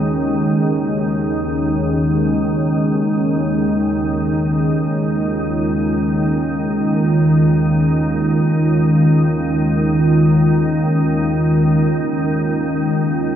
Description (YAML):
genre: dark ambient drone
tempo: free time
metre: none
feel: none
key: Eb minor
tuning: A4 = 440 Hz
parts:
  - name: dark analog pad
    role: sustained chords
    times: 0.0-13.4 s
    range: Eb3 to Gb4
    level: -18 LUFS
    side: right 1 dB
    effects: chorus
  - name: organ-like drone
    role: drone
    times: 0.0-13.4 s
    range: Eb2 to Eb3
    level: -17 LUFS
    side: equal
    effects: ensemble chorus, built-in reverb
room: wet cathedral reverb, RT60 5.2 s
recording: in a vast, echoing space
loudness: -14 LUFS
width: side -10 dB against mid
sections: 0.0-13.4 A section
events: none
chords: 0.0 Ebm; 3.0 Eb9sus4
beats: free time